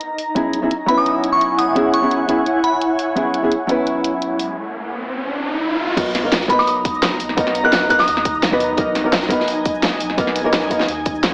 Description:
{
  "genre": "liquid drum and bass",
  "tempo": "171 BPM",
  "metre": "4/4",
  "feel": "straight",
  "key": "B major",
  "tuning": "A4 = 439 Hz",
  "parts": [
    { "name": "shimmering ambient pad", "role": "sustained chords", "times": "0.0-11.3 s", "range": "D#4 to A#5", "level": "-22 LUFS", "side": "equal", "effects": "chorus, built-in reverb" },
    { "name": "pop drum kit", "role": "drums", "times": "0.0-11.3 s", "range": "crash cymbal, hi-hat, shaker, snare drum", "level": "-21 LUFS", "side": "equal", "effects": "none" },
    { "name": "hollow-body jazz guitar", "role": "accompaniment", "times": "0.3-10.9 s", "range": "F#3 to B4", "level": "-19 LUFS", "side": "equal", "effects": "dub echo" },
    { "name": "glassy synth bell", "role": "melody", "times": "0.9-3.0, 6.5-8.3 s", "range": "B5 to F#6", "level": "-19 LUFS", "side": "equal", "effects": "chorus, phaser, dub echo" },
    { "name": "riser", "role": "sound effects", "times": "4.4-6.0 s", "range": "none", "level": "-23 LUFS", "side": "equal", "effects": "none" },
    { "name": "sub bass with octave", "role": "bass", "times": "6.0-11.3 s", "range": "F#1 to D#2", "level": "-37 LUFS", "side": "equal", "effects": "none" },
    { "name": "crunchy breakbeat drum kit", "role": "drums", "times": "6.0-11.3 s", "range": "hi-hat, snare drum", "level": "-24 LUFS", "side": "equal", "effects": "high-pass filter on hats, high-pass filter on snare, high-pass filter on room" },
    { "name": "electronic kick drum", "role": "drums", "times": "6.0-11.1 s", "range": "none", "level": "-24 LUFS", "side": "equal", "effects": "none" }
  ],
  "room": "moderate digital room reverb, RT60 1.1 s, digital ambience",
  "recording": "AM radio sound",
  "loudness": "-15 LUFS",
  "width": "side -33 dB against mid",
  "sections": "0.0-6.0 A section; 6.0-11.3 B section",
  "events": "riser 4.4-6.0; break 4.6-6.0; drop 6.0-11.3",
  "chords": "0.4 E69; 6.0 Bmaj7"
}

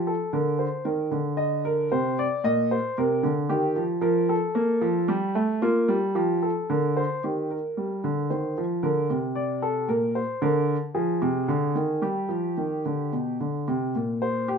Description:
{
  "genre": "classical, baroque-style two-part invention for grand piano",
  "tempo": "113 BPM",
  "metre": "3/4",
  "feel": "straight",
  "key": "Eb major, C minor from 10.4 s",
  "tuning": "A4 = 438 Hz",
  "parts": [
    { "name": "warm baby grand piano", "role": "solo", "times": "0.0-14.6 s", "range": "Bb2 to Eb5", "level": "-23 LUFS", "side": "equal", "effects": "none" }
  ],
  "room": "moderate studio reverb, RT60 0.9 s",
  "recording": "nothing above 7.5 kHz",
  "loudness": "-23 LUFS",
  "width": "side -6 dB against mid",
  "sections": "0.0-7.2 A section; 7.2-13.7 B section",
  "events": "none",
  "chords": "0.3 Bb/D; 0.8 Eb5; 1.9 Csus2; 2.4 Eb5/Bb; 3.5 Eb; 4.0 Bb5/F; 5.1 Gsus2; 5.6 Bb5; 6.7 Bb/D; 7.2 Eb; 8.3 F5/Eb; 8.8 Bb; 9.9 Bbsus2; 10.4 Ddim; 12.0 G; 13.7 C5"
}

